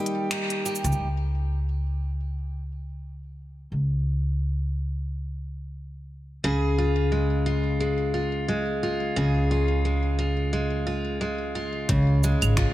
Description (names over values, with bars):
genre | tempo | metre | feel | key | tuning
folktronica | 88 BPM | 4/4 | swing 56% on 16ths | Db lydian | A4 = 444 Hz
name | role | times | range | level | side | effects
picked steel-string acoustic guitar | arpeggios | 0.0-1.1, 6.4-12.7 s | Db3 to Ab4 | -26 LUFS | equal | vintage 12-bit sampler grit, ping-pong delay
organic electronic drum kit | drums | 0.1-1.0, 11.9-12.7 s | cabasa, claves, finger snaps, hi-hat | -29 LUFS | right 1 dB | overdrive
upright bass | bass | 0.8-12.6 s | Ab1 to Db2 | -26 LUFS | equal | none
electronic kick drum | drums | 11.9-12.7 s | none | -25 LUFS | equal | overdrive
room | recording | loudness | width
light reverb, studio reverb | none | -23 LUFS | side -15 dB against mid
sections
1.0-11.9 A section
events
break 0.0-1.0; band accent 0.3-0.6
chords
0.0 Eb; 1.0 Db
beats
0.31 | 0.99 1.67 2.35 3.03 | 3.72 4.40 5.08 5.76 | 6.44 7.12 7.81 8.49 | 9.17 9.85 10.53 11.22 | 11.90 12.58